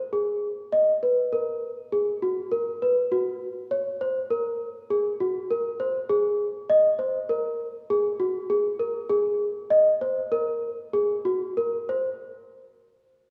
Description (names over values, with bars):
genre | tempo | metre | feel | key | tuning
contemporary instrumental, contemporary | 100 BPM | 5/4 | straight | unclear | A4 = 440 Hz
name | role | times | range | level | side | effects
celesta | solo | 0.1-12.1 s | Gb4 to Eb5 | -26 LUFS | equal | none
room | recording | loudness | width
moderate concert hall reverb, RT60 1.9 s | recorded in a church or concert hall | -26 LUFS | mono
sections
0.0-12.2 A section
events
slowing down 7.3-12.2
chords
none